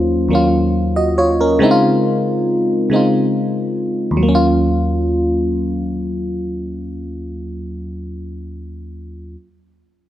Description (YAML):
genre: R&B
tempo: 46 BPM (dotted quarters)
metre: 6/8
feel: straight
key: Eb dorian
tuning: A4 = 440 Hz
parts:
  - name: FM electric piano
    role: solo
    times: 0.0-9.3 s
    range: Eb2 to Eb5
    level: -15 LUFS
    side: equal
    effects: chorus, slapback echo
room: moderate echo chamber reverb, RT60 2.3 s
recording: none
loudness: -14 LUFS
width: side -12 dB against mid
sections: 0.0-4.2 A section; 4.2-6.8 B section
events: none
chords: 0.0 Ebm9; 1.6 Dbmaj9; 4.2 Ebm9